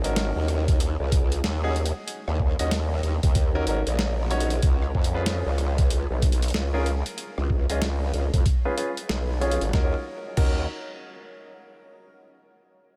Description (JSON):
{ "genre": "glitch hop", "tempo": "94 BPM", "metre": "4/4", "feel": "swing 62% on 16ths", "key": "Eb minor", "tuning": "A4 = 439 Hz", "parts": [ { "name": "bright grand piano", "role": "stabs", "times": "0.0-10.6 s", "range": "Db4 to Eb5", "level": "-34 LUFS", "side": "equal", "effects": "sidechain pumping, low-pass filter, delay" }, { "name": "growl bass", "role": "bass", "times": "0.0-10.7 s", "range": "Ab1 to F2", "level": "-28 LUFS", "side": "equal", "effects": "chorus, tube saturation" }, { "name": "boom bap sampler-style drum kit", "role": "drums", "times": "0.0-10.5 s", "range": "crash cymbal, hi-hat, rim click, snare drum", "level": "-35 LUFS", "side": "equal", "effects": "none" }, { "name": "electronic kick drum", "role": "drums", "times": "0.7-10.5 s", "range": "none", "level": "-25 LUFS", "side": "equal", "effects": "none" } ], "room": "light reverb", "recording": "none", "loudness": "-25 LUFS", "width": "mono", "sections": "0.0-9.7 A section; 9.7-12.3 B section", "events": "filter sweep on grand piano 0.0-9.7", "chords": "0.0 Ebm7; 4.6 Db7; 9.7 Ebm7" }